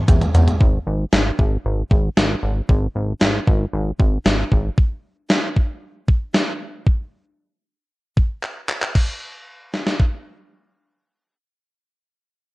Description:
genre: synth-pop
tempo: 115 BPM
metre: 4/4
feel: straight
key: unclear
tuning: A4 = 440 Hz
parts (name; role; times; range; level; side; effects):
- chorused synth bass; bass; 0.1-4.7 s; G#1 to E2; -19 LUFS; equal; none
- gated 80s digital drum machine; drums; 0.1-10.1 s; crash cymbal, handclaps, hi-hat, kick drum, snare drum, toms; -17 LUFS; equal; gated reverb, gated reverb snare
room: little or no reverb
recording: worn, warbling old tape, cassette tape, warbly pitch drift, lossy compression artefacts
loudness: -17 LUFS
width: side -21 dB against mid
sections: 0.6-9.0 A section; 9.0-12.5 B section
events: drum fill 0.0-0.6, 8.4-9.0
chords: none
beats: 0.08 | 0.60 1.13 1.65 2.17 | 2.69 3.21 3.73 4.26 | 4.78 5.30 5.82 6.34 | 6.87 7.39 7.91 8.43 | 8.95 9.47 10.00

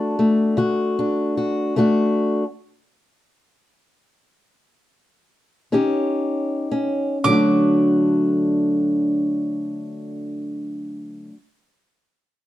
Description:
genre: acoustic country blues, solo or duo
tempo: 38-51 BPM (dotted quarters)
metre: 12/8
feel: straight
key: D major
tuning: A4 = 441 Hz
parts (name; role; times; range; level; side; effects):
- mandolin; melody; 0.0-11.2 s; A5 to D6; -25 LUFS; right 5 dB; none
- fingerpicked old ladder-braced acoustic guitar; accompaniment; 0.0-11.4 s; D3 to G4; -18 LUFS; left 1 dB; none
room: light reverb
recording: dark, warm production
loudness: -18 LUFS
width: side -14 dB against mid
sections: 0.0-7.2 A section; 7.2-12.5 B section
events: slowing down 0.2-7.2; stop 1.8-5.7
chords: 0.0 D; 5.7 Eb7; 7.2 D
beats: 0.58 | 1.78 3.02 4.32 5.72 | 7.24 8.83 10.43

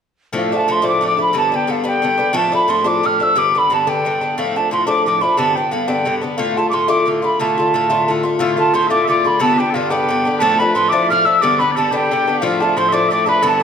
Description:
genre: celtic folk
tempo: 119 BPM (dotted quarters)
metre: 6/8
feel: straight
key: D dorian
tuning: A4 = 440 Hz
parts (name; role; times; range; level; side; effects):
- Irish bouzouki; accompaniment; 0.3-13.6 s; G2 to F4; -18 LUFS; left 2 dB; none
- mellow hollow wooden whistle; melody; 0.4-13.6 s; F5 to F6; -16 LUFS; right 1 dB; none
- mellow small bagpipes; second line; 8.4-13.6 s; F4 to F5; -23 LUFS; left 1 dB; none
room: wet recital hall reverb, RT60 1.5 s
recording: none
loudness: -14 LUFS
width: side -7 dB against mid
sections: 0.3-8.4 A section; 8.4-13.6 A section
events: none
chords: 0.3 Dm; 1.3 G; 2.4 Dm; 3.4 G; 4.4 Dm; 5.4 G; 6.4 Dm; 9.4 G; 10.4 Dm; 11.4 G; 12.4 Dm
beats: | 0.34 0.84 | 1.35 1.85 | 2.35 2.86 | 3.36 3.87 | 4.37 4.87 | 5.38 5.88 | 6.38 6.89 | 7.39 7.90 | 8.40 8.91 | 9.41 9.91 | 10.42 10.92 | 11.43 11.93 | 12.43 12.94 | 13.44

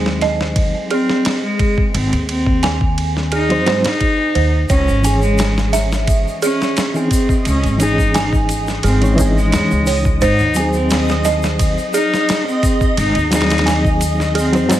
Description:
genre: trip hop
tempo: 87 BPM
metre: 4/4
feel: straight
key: unclear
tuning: A4 = 437 Hz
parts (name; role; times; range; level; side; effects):
- rich cello; melody; 0.0-14.8 s; G#3 to D#4; -19 LUFS; left 1 dB; dub echo
- reed electric piano; accompaniment; 0.0-14.8 s; E3 to C#5; -21 LUFS; equal; fast tremolo
- dark detuned synth bell; arpeggios; 0.0-14.8 s; G#4 to G#5; -22 LUFS; right 4 dB; chorus, tape echo
- upright bass; bass; 0.0-14.8 s; G#1 to G#2; -18 LUFS; equal; none
- dusty soul sampler-style drum kit; drums; 0.1-14.8 s; hi-hat, kick drum, ride cymbal, snare drum; -20 LUFS; equal; studio reverb
- tube shaker; percussion; 4.7-14.8 s; none; -30 LUFS; left 3 dB; none
- backwards swelling texture; texture; 5.9-14.8 s; D#5; -27 LUFS; right 1 dB; built-in reverb
room: digital ambience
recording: none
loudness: -13 LUFS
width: side -12 dB against mid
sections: 0.0-14.8 A section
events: none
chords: 0.0 G#7; 4.7 C#madd9; 10.2 G#7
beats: 0.56 1.25 | 1.94 2.63 3.32 4.01 | 4.70 5.39 6.08 6.77 | 7.46 8.15 8.84 9.53 | 10.22 10.91 11.60 12.29 | 12.97 13.66 14.35

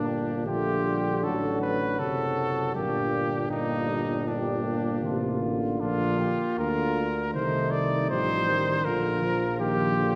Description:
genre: classical, brass quintet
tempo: 79 BPM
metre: 4/4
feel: straight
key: G minor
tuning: A4 = 440 Hz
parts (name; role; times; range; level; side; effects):
- clear trumpet; melody; 0.0-10.2 s; D4 to D5; -31 LUFS; equal; none
- clear flugelhorn; second line; 0.0-10.2 s; D4 to G4; -37 LUFS; equal; none
- mellow trombone; accompaniment; 0.0-10.2 s; Bb2 to F3; -34 LUFS; equal; none
- warm French horn; accompaniment; 0.0-10.2 s; F3 to Bb3; -35 LUFS; equal; none
- warm tuba; bass; 0.0-10.2 s; F#1 to D2; -34 LUFS; equal; none
room: wet recital hall reverb, RT60 1.5 s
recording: none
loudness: -27 LUFS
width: mono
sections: 0.0-10.2 A section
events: none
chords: 0.0 Gm; 1.2 F#dim/A; 2.8 Gm; 5.8 Bb; 7.3 Adim/C; 8.9 Bb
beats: 0.46 1.23 1.99 | 2.76 3.51 4.28 5.04 | 5.81 6.59 7.35 8.11 | 8.86 9.61

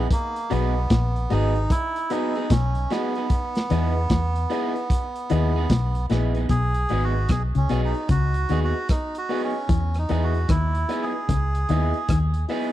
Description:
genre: roots reggae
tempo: 75 BPM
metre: 4/4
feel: swing 64% on 16ths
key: B major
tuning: A4 = 439 Hz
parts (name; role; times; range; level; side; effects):
- melodica; melody; 0.0-12.2 s; A#3 to G#4; -28 LUFS; right 3 dB; tape echo
- electric guitar through a small old amp; accompaniment; 0.0-12.7 s; B3 to G#4; -31 LUFS; right 4 dB; spring reverb, tape echo
- vintage muted fingered electric bass; bass; 0.0-12.4 s; G#1 to E2; -23 LUFS; equal; none
- crunchy breakbeat drum kit; drums; 0.1-12.7 s; hi-hat, kick drum, rim click, snare drum; -22 LUFS; equal; none
- mellow electric guitar; riff; 0.5-12.3 s; G#2 to E3; -26 LUFS; left 5 dB; none
- dark grand piano; stabs; 0.5-12.7 s; E4 to D#5; -30 LUFS; left 5 dB; none
room: little or no reverb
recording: dry, close 1970s-style studio recording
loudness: -20 LUFS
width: side -13 dB against mid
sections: 0.0-6.5 A section; 6.5-12.7 B section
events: melodica solo 6.5-12.7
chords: 0.1 B6; 3.3 Emaj7; 6.5 B6; 9.7 Emaj7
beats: | 0.10 0.90 1.70 2.50 | 3.30 4.10 4.90 5.70 | 6.49 7.29 8.09 8.89 | 9.69 10.49 11.29 12.09

